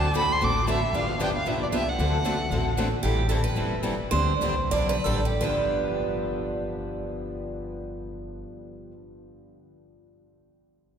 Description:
acoustic string swing (jazz manouche); 161-230 BPM; 4/4; swing 56% on 8ths; G mixolydian; A4 = 440 Hz
warm violin; melody; 0.0-2.8 s; D5 to D6; -28 LUFS; right 1 dB
picked steel-string acoustic guitar; accompaniment; 0.0-8.9 s; G2 to A4; -30 LUFS; left 3 dB
picked steel-string acoustic guitar; accompaniment; 0.0-8.9 s; G2 to A4; -32 LUFS; right 4 dB
upright bass; bass; 0.0-8.4 s; E1 to D2; -28 LUFS; equal
picked steel-string acoustic guitar; second line; 3.0-8.4 s; G4 to D5; -30 LUFS; right 4 dB
wet cathedral reverb, RT60 5.0 s; recorded in a church or concert hall; -23 LUFS; side -8 dB against mid
0.0-3.0 A section; 3.0-5.4 B section; 5.4-8.4 C section
slowing down 3.0-5.4
0.0 D7; 0.9 G7; 2.0 D7; 3.0 Am7; 4.1 D7sus4; 5.4 G7
0.15 0.41 0.68 | 0.94 1.20 1.46 1.72 | 1.98 2.24 2.50 2.76 | 3.02 3.29 3.56 3.83 | 4.11 4.41 4.72 5.06 | 5.42 5.79 6.16 6.54 | 6.91 7.28 7.66 8.03

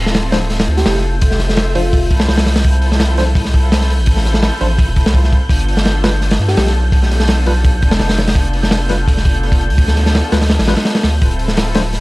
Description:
drum and bass, jungle; 168 BPM; 4/4; straight; D dorian; A4 = 440 Hz
muted studio string section; sustained chords; 0.0-12.0 s; B3 to E5; -23 LUFS; left 1 dB; vintage 12-bit sampler grit
saturated sub bass; bass; 0.0-12.0 s; D1 to G2; -15 LUFS; equal; transformer saturation
wind-like tuned noise texture; texture; 0.2-12.0 s; G6; -27 LUFS; equal; built-in reverb
crunchy breakbeat drum kit; drums; 0.1-12.0 s; hi-hat, kick drum, snare drum; -14 LUFS; equal
tine electric piano; stabs; 0.3-11.8 s; F3 to C5; -24 LUFS; left 1 dB; fast stereo tremolo, dub echo
bell-like FM electric piano; melody; 0.8-2.1, 6.5-6.7 s; F4 to G4; -24 LUFS; equal; chorus, dub echo
studio ambience; dry, gritty hardware recording, vinyl crackle; -11 LUFS; side -21 dB against mid
0.0-12.0 A section
0.0 Dm7; 5.5 G7; 11.2 Dm7
0.14 0.50 0.86 | 1.22 1.57 1.93 2.29 | 2.64 3.00 3.36 3.72 | 4.07 4.43 4.79 5.14 | 5.50 5.86 6.22 6.57 | 6.93 7.29 7.64 8.00 | 8.36 8.72 9.07 9.43 | 9.79 10.14 10.50 10.86 | 11.22 11.57 11.93

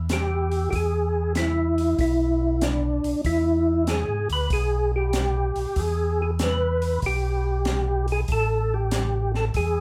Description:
soul jazz organ trio; 95 BPM; 4/4; swing 68% on 8ths; A4 = 440 Hz
tonewheel organ; bass; 0.0-9.8 s; A1 to G#2; -28 LUFS; equal; slow rotary speaker
percussive tonewheel organ; melody; 0.1-9.8 s; D4 to B4; -27 LUFS; equal; slow rotary speaker, chorus vibrato
open jazz drum kit; drums; 0.1-9.7 s; hi-hat, kick drum, snare drum; -33 LUFS; equal
moderate studio ambience, RT60 0.5 s; heard from further back in the room; -24 LUFS; mono
0.0-9.8 A section
0.0 N.C.; 0.7 E; 8.3 Gsus2/A
0.09 | 0.72 1.35 1.99 2.62 | 3.25 3.88 4.51 5.14 | 5.77 6.40 7.03 7.66 | 8.29 8.92 9.55

